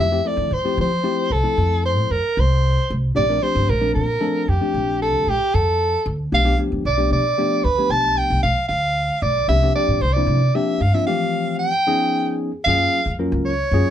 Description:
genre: jazz.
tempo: 76 BPM (dotted quarters).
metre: 6/8.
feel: straight.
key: F major.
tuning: A4 = 439 Hz.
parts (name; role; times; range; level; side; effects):
clear soprano saxophone; melody; 0.0-13.9 s; G4 to A5; -20 LUFS; right 1 dB; none.
tine electric piano; accompaniment; 0.0-13.9 s; E3 to Bb4; -23 LUFS; left 3 dB; none.
upright bass; bass; 0.0-13.8 s; Bb1 to F3; -20 LUFS; equal; none.
room: moderate studio ambience, RT60 0.5 s.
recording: band playing live in one room.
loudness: -17 LUFS.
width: side -10 dB against mid.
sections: 0.0-12.7 A section; 12.7-13.9 B section.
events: break 11.1-12.7.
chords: 0.0 Fmaj7; 3.2 Bbmaj13; 6.3 G7/B; 9.5 C9sus4; 11.1 Fmaj7; 11.9 Db7; 12.7 Gbmaj7.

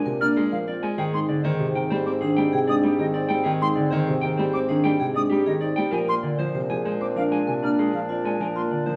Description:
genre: classical, minimalist pattern music.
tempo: 97 BPM.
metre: 4/4.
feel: straight.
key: Ab lydian.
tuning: A4 = 440 Hz.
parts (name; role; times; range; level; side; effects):
mellow electric guitar; melody; 0.0-9.0 s; G4 to Ab5; -33 LUFS; equal; none.
warm clarinet; second line; 0.0-9.0 s; C4 to D4; -35 LUFS; equal; none.
warm concert grand piano; accompaniment; 0.0-9.0 s; C3 to C4; -29 LUFS; equal; none.
dark bassoon; bass; 0.0-9.0 s; Ab2 to Bb2; -32 LUFS; equal; none.
vibraphone with medium hard mallets; arpeggios; 0.1-9.0 s; D4 to C5; -28 LUFS; equal; none.
silver concert flute; arpeggios; 0.2-8.6 s; Eb5 to F6; -32 LUFS; equal; none.
room: moderate large studio reverb, RT60 1.3 s.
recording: none.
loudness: -23 LUFS.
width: mono.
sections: 0.0-9.0 A section.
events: none.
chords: 0.0 Bb7; 1.0 Abmaj7; 5.9 Bb7.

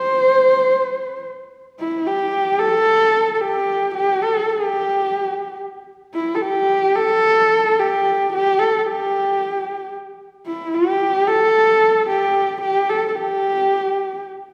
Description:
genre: mongolian traditional.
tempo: free time.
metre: none.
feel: none.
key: unclear.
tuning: A4 = 441 Hz.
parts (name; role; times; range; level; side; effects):
warm horsehead fiddle; melody; 0.0-14.2 s; E4 to C5; -18 LUFS; equal; none.
room: wet recital hall reverb, RT60 1.7 s.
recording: recorded in a church or concert hall.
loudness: -18 LUFS.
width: mono.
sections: 0.0-1.8 A section; 1.8-14.5 B section.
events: none.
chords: none.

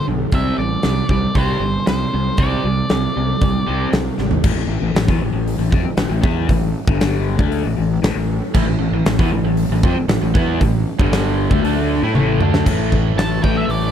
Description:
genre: classic rock.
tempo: 117 BPM.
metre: 4/4.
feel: straight.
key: A minor.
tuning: A4 = 440 Hz.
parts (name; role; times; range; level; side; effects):
octave-fuzz lead guitar; melody; 0.0-3.9, 13.2-13.9 s; C5 to A5; -24 LUFS; equal; distortion.
crunchy overdriven guitar; riff; 0.0-13.9 s; G2 to E4; -22 LUFS; left 10 dB; phaser.
overdriven semi-hollow guitar; riff; 0.0-4.4, 8.5-13.9 s; G2 to E4; -23 LUFS; right 13 dB; none.
fuzz fingered electric bass; bass; 0.1-13.9 s; G1 to A2; -21 LUFS; equal; overdrive.
huge arena drum kit; drums; 0.3-13.8 s; crash cymbal, hi-hat, kick drum, snare drum, toms; -19 LUFS; equal; none.
room: little or no reverb.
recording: none.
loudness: -15 LUFS.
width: side -9 dB against mid.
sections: 0.0-4.4 A section; 4.4-12.7 B section; 12.7-13.9 C section.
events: drum fill 4.2, 12.1-12.7; lead electric guitar solo 12.7-13.9.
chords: 0.3 Csus2; 4.4 A5; 6.9 G5; 7.4 A5; 11.0 G5; 11.5 A5.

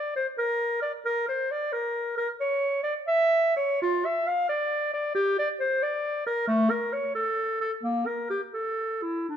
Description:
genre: classical, baroque-style fantasia for unaccompanied clarinet.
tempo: 87 BPM (dotted quarters).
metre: 12/8.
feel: uneven beats, rubato.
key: D minor.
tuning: A4 = 444 Hz.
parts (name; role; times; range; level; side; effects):
mellow clarinet; solo; 0.0-9.4 s; A3 to F5; -25 LUFS; equal; none.
room: moderate recital hall reverb, RT60 1.4 s.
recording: close, detailed microphones.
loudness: -24 LUFS.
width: side -9 dB against mid.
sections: 0.0-9.4 A section.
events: none.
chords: none.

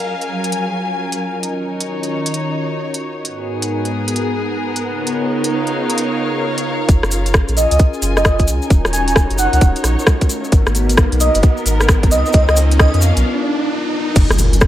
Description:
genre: UK garage, two-step garage.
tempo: 132 BPM.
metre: 4/4.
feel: swing 64% on 16ths.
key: unclear.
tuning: A4 = 440 Hz.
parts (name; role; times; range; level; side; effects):
warm analog pad; sustained chords; 0.0-14.7 s; Ab2 to Bb4; -23 LUFS; left 1 dB; chorus, sidechain pumping.
rich studio string section; texture; 0.0-13.3 s; Gb3 to Ab5; -22 LUFS; equal; sidechain pumping.
garage drum kit; drums; 0.2-14.7 s; crash cymbal, hi-hat, rim click; -19 LUFS; equal; high-pass filter on hats, high-pass filter on snare, high-pass filter on cymbals, high-pass filter on room.
soft dub sub bass; bass; 6.9-14.7 s; Eb1 to F2; -16 LUFS; equal; none.
electronic kick drum; drums; 6.9-14.7 s; none; -12 LUFS; equal; none.
cabasa; percussion; 6.9-14.7 s; none; -26 LUFS; left 2 dB; none.
riser and impact; sound effects; 8.9-14.7 s; none; -24 LUFS; equal; none.
airy dreamy lead; melody; 7.6-13.0 s; Eb5 to Ab5; -19 LUFS; right 2 dB; chorus, analog delay.
room: light reverb.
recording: dry, gritty hardware recording.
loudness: -14 LUFS.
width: side -13 dB against mid.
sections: 0.0-6.9 A section; 6.9-14.2 B section.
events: filter sweep on analog synth pad 0.0-6.9; build-up 6.9-14.2; filter sweep on digital synth lead 6.9-14.2; riser 8.9-14.2; break 13.3-14.2; impact 14.2-14.7.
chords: 0.0 Gbmaj9; 1.4 Ebm7; 3.3 Abm9; 4.8 Db13; 6.9 Gbmaj9; 8.7 Ebm7; 10.5 Abm9; 12.1 Db13; 14.2 Gbmaj9.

